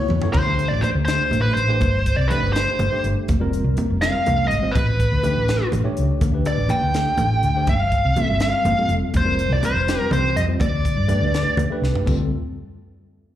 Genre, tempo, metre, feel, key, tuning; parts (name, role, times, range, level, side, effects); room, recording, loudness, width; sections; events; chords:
electric jazz fusion; 82 BPM (dotted quarters); 6/8; straight; D dorian; A4 = 440 Hz
tine electric piano; accompaniment; 0.0-12.3 s; G3 to C#5; -27 LUFS; equal; overdrive, fast stereo tremolo, slapback echo
hollow-body short-scale fingered electric bass; bass; 0.0-12.3 s; F1 to G2; -21 LUFS; equal
crisp fusion drum kit; drums; 0.1-12.2 s; crash cymbal, hi-hat, kick drum, snare drum, toms; -25 LUFS; equal
congas; percussion; 0.1-12.3 s; -28 LUFS; right 2 dB; slapback echo
bluesy overdriven lead guitar; melody; 0.3-11.5 s; B4 to G5; -22 LUFS; equal; distortion, slapback echo
small room ambience; live gig heard through the venue's PA, club reverb; -17 LUFS; side -12 dB against mid
0.4-12.1 A section; 12.1-13.4 B section
drum fill 0.0-0.4, 11.8
0.4 D7sus4; 1.8 Gsus24; 3.3 Fsus24; 4.7 A9sus4; 6.2 Dsus4; 7.7 G9sus4; 9.1 Fsus24; 10.6 Dsus4; 12.1 Dm